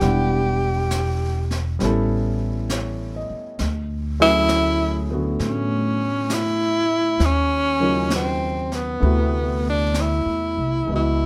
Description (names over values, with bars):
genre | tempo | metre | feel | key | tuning
jazz ballad | 66 BPM | 4/4 | swing 66% on 8ths | unclear | A4 = 440 Hz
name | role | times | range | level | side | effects
breathy tenor saxophone | melody | 0.0-11.3 s | B3 to G4 | -24 LUFS | equal | plate reverb
warm baby grand piano | accompaniment | 0.0-11.3 s | C3 to F#5 | -28 LUFS | equal | none
upright bass | bass | 0.0-11.3 s | E1 to A2 | -26 LUFS | equal | none
jazz brush drum kit | drums | 0.0-11.3 s | brushed snare drum, hi-hat, snare drum | -33 LUFS | equal | none
room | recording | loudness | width
light reverb | none | -21 LUFS | mono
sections
0.0-10.9 A section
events
none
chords
0.0 Em9; 1.8 A7; 3.6 Dmaj9#11; 7.2 D#m7; 9.0 D13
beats
| 0.01 0.91 1.81 2.70 | 3.59 4.49 5.39 6.29 | 7.20 8.10 9.02 9.95 | 10.88